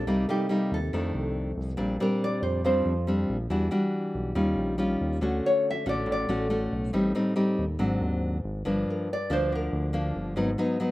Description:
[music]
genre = bossa nova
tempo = 140 BPM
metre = 4/4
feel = straight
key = Bb major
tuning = A4 = 440 Hz
[part]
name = nylon-string guitar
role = melody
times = 0.0-10.1 s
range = G4 to E5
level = -29 LUFS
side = equal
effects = none
[part]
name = nylon-string guitar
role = accompaniment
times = 0.0-10.9 s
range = F2 to F#4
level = -27 LUFS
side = left 1 dB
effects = none
[part]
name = round analog bass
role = bass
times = 0.0-10.6 s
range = G1 to F2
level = -30 LUFS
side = equal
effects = none
[sound]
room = little or no reverb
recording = recorded outdoors, with no room sound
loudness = -25 LUFS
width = side -17 dB against mid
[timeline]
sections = 0.0-1.8 A section; 1.8-10.9 B section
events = nylon-string guitar solo 1.8-10.9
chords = 0.1 Cm7; 0.9 F6; 1.8 Bb69; 3.5 Em9; 4.4 Eb9; 5.2 Dmaj7; 6.9 Am7b5; 7.8 Ab7#11; 8.7 Gm7; 10.4 Abm7

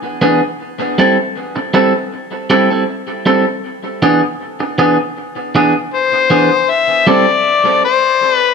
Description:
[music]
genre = reggae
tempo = 79 BPM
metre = 4/4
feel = straight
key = A minor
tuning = A4 = 440 Hz
[part]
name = clean electric guitar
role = accompaniment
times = 0.2-7.3 s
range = E3 to A4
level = -13 LUFS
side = right 1 dB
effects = tape echo
[part]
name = overdriven harmonica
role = melody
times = 5.9-8.5 s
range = C5 to E5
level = -11 LUFS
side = left 6 dB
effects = tape echo
[sound]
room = moderate echo chamber reverb, RT60 1.5 s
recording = none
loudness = -11 LUFS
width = side -5 dB against mid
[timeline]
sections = 0.0-6.7 A section; 6.7-8.5 B section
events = none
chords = 0.0 E7; 0.6 Am7; 3.6 E7; 6.7 Am7

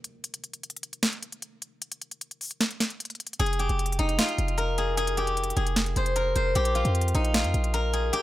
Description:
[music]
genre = hip hop, trap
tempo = 152 BPM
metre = 4/4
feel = half-time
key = F minor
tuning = A4 = 437 Hz
[part]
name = trap drum kit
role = drums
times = 0.0-8.2 s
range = hi-hat, snare drum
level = -29 LUFS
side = equal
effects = none
[part]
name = steel-string zither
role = melody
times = 3.4-8.2 s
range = Eb4 to C5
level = -26 LUFS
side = left 1 dB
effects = tape echo
[part]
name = hard-hitting 808-style bass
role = bass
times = 3.4-8.1 s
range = F1 to F2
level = -26 LUFS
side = equal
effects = none
[sound]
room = studio ambience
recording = dry, gritty hardware recording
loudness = -24 LUFS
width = side -15 dB against mid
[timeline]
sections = 0.0-8.2 A section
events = break 0.0-3.4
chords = 0.0 N.C.; 3.4 Fm; 6.6 Bb5

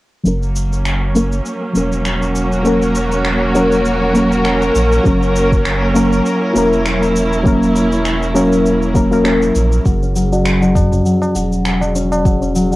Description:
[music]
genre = organic downtempo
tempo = 100 BPM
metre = 4/4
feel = swing 55% on 16ths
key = unclear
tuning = A4 = 439 Hz
[part]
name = deep mellow chord stab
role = accompaniment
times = 0.2-9.9 s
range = F#3 to A#4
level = -16 LUFS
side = left 1 dB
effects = chorus, vintage 12-bit sampler grit, sidechain pumping, cassette tape, analog delay, plate reverb
[part]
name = rich studio string section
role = sustained chords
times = 0.3-9.9 s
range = F#3 to A#4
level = -17 LUFS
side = right 1 dB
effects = sidechain pumping, cassette tape, plate reverb
[part]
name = warm sub bass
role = bass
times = 0.3-12.8 s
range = E1 to A#1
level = -19 LUFS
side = equal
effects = transformer saturation
[part]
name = electronic cabasa and finger snaps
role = drums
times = 0.3-12.8 s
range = none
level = -24 LUFS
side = equal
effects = cassette tape
[part]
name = electronic kick drum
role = drums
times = 5.1-12.4 s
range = none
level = -16 LUFS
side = equal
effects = cassette tape
[part]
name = concert harp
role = arpeggios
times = 9.9-12.8 s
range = F#3 to F#4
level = -15 LUFS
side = left 1 dB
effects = low-pass filter, cassette tape, analog delay
[part]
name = tabla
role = percussion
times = 10.3-12.8 s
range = none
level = -20 LUFS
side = equal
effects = none
[sound]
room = moderate studio reverb, RT60 0.5 s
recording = home recording on cassette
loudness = -12 LUFS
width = side -18 dB against mid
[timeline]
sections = 0.3-9.9 A section; 9.9-12.8 B section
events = filter sweep on synth stab 0.3-9.9; filter sweep on harp 9.9-12.8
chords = 0.3 F#; 9.9 F#5

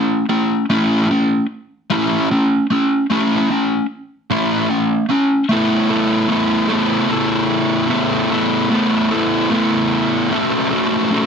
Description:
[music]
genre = rock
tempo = 50 BPM (dotted quarters)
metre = 6/8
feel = straight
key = A major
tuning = A4 = 440 Hz
[part]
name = fuzz guitar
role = solo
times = 0.0-11.3 s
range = A3 to A4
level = -14 LUFS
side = equal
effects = distortion
[sound]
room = wet studio reverb, RT60 0.6 s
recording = heavily compressed radio sound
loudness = -14 LUFS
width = side -6 dB against mid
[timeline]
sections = 0.0-5.5 A section; 5.5-11.3 B section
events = none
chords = 0.0 F#m/A (rootless); 0.7 A; 5.5 Asus2; 10.3 F#m/A

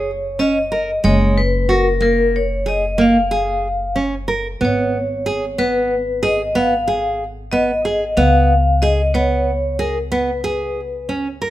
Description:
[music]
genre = contemporary instrumental, chamber music in an uneven meter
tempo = 185 BPM (eighths)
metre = 11/8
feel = straight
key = unclear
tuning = A4 = 439 Hz
[part]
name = vibraphone with hard mallets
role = melody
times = 0.0-11.1 s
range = A#4 to E#5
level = -19 LUFS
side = left 2 dB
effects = none
[part]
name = nylon-string guitar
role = arpeggios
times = 0.0-11.5 s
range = G#3 to A#4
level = -19 LUFS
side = right 2 dB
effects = none
[part]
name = upright bass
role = bass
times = 0.0-11.5 s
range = F#1 to C#2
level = -22 LUFS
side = left 1 dB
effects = none
[sound]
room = light reverb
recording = close, detailed microphones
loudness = -15 LUFS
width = side -14 dB against mid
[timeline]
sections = 0.0-11.5 A section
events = none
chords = 0.0 F#add9; 4.6 G#m; 8.2 C#7(no3)

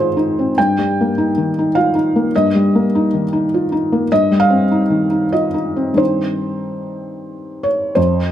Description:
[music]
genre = neoclassical minimalist piano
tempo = 87-103 BPM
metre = 3/4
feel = rubato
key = unclear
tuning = A4 = 444 Hz
[part]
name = felt-muted upright piano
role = solo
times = 0.0-8.3 s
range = F2 to G5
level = -14 LUFS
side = equal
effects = none
[sound]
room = light reverb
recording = close, detailed microphones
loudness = -14 LUFS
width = side -11 dB against mid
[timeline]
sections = 0.0-8.0 A section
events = none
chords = 0.0 Ab; 0.6 Eb/G; 4.1 Cm/G

